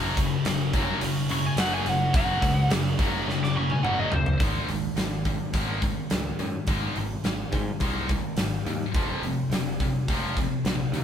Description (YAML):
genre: hard rock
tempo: 106 BPM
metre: 4/4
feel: straight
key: Ab mixolydian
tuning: A4 = 440 Hz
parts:
  - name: heavy high-gain guitar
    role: riff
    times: 0.0-4.1 s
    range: Gb2 to Gb3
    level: -34 LUFS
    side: right 1 dB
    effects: distortion
  - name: scooped high-gain guitar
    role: riff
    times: 0.0-11.0 s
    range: F2 to Ab3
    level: -29 LUFS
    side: left 6 dB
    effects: distortion
  - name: tight distorted guitar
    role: riff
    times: 0.0-11.0 s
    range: F2 to Ab3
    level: -32 LUFS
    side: right 5 dB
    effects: distortion
  - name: modern bright picked electric bass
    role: bass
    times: 0.0-11.0 s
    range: F1 to Ab2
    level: -32 LUFS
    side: equal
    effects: none
  - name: huge arena drum kit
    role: drums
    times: 0.2-11.0 s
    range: hi-hat, kick drum, snare drum, toms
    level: -28 LUFS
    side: equal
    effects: none
  - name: lead guitar through a small cranked amp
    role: melody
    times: 1.3-4.4 s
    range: C5 to D6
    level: -28 LUFS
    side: equal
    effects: overdrive
room: light reverb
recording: band playing live in one room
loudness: -23 LUFS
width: side -9 dB against mid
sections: 0.0-4.4 A section; 4.4-11.0 B section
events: lead electric guitar solo 0.0-4.4; drum fill 3.3-4.4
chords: 0.0 Gb5; 4.4 Ab5; 9.0 F5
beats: 0.46 1.02 1.59 | 2.15 2.71 3.28 3.84 | 4.41 4.98 5.54 6.11 | 6.68 7.25 7.82 8.39 | 8.96 9.52 10.09 10.66